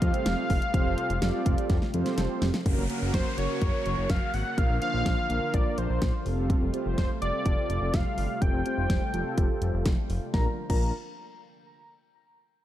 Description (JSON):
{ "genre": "synth-pop", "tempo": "125 BPM", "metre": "4/4", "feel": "straight", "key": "Bb major", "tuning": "A4 = 440 Hz", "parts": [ { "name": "octave-doubled lead", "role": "melody", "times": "0.0-10.9 s", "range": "C5 to Bb5", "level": "-33 LUFS", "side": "left 1 dB", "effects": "chorus, low-pass filter, ping-pong delay" }, { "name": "mellow synth brass", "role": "accompaniment", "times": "0.0-10.9 s", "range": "Bb3 to D5", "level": "-33 LUFS", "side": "right 2 dB", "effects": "chorus, low-pass filter" }, { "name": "lush unison pad", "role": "sustained chords", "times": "0.0-10.6 s", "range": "C3 to Gb4", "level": "-37 LUFS", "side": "equal", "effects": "chorus, low-pass filter" }, { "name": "fat analog bass", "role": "bass", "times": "0.0-10.9 s", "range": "F1 to F2", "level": "-30 LUFS", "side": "equal", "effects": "none" }, { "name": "pop drum kit", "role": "drums", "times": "0.0-10.8 s", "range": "crash cymbal, hi-hat, kick drum, snare drum", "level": "-27 LUFS", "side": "equal", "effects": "none" }, { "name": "downlifter", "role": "sound effects", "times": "2.7-6.5 s", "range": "none", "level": "-41 LUFS", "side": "left 2 dB", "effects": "none" } ], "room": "light reverb, digital ambience", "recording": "dark, warm production", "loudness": "-24 LUFS", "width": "side -12 dB against mid", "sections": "0.0-2.7 A section; 2.7-10.3 B section; 10.3-12.3 C section", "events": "drum fill 1.7-2.7", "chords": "0.0 Fadd9; 2.7 Gb; 4.6 Bb; 6.3 Fadd9; 10.3 Bb" }